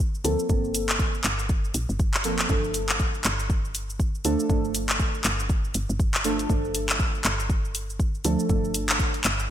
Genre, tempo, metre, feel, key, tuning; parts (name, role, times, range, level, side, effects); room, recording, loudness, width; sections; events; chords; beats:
afro house; 120 BPM; 4/4; swing 60% on 16ths; A4 = 442 Hz
woody FM bass; bass; 0.0-9.5 s; G1 to D2; -30 LUFS; equal; sidechain pumping
electronic kick drum; drums; 0.0-9.1 s; -25 LUFS; equal
house drum kit; drums; 0.0-9.5 s; cabasa, handclaps, hi-hat; -26 LUFS; equal; gated reverb
deep mellow chord stab; stabs; 0.2-9.5 s; F3 to A4; -28 LUFS; right 1 dB; chorus, sidechain pumping, ping-pong delay
light reverb, digital ambience; bright 1980s-style digital production; -22 LUFS; side -11 dB against mid
0.0-9.5 A section
0.0 Gm11; 2.5 Dm/G
0.00 | 0.49 0.99 1.50 2.00 | 2.50 3.00 3.50 4.00 | 4.50 5.00 5.50 6.00 | 6.50 7.00 7.50 8.00 | 8.49 8.99 9.49